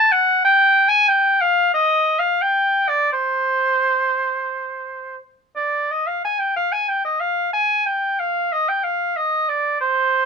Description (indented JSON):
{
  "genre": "classical, baroque-style fantasia for unaccompanied oboe",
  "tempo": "89 BPM",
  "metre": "4/4",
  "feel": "uneven beats, rubato",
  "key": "C minor",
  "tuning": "A4 = 439 Hz",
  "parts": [
    { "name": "clear oboe", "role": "solo", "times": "0.0-10.3 s", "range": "C5 to A5", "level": "-16 LUFS", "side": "equal", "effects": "none" }
  ],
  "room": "light reverb",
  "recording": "dark, warm production",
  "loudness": "-16 LUFS",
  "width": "side -6 dB against mid",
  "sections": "0.0-5.9 A section; 5.9-10.3 A section",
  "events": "none",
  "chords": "none"
}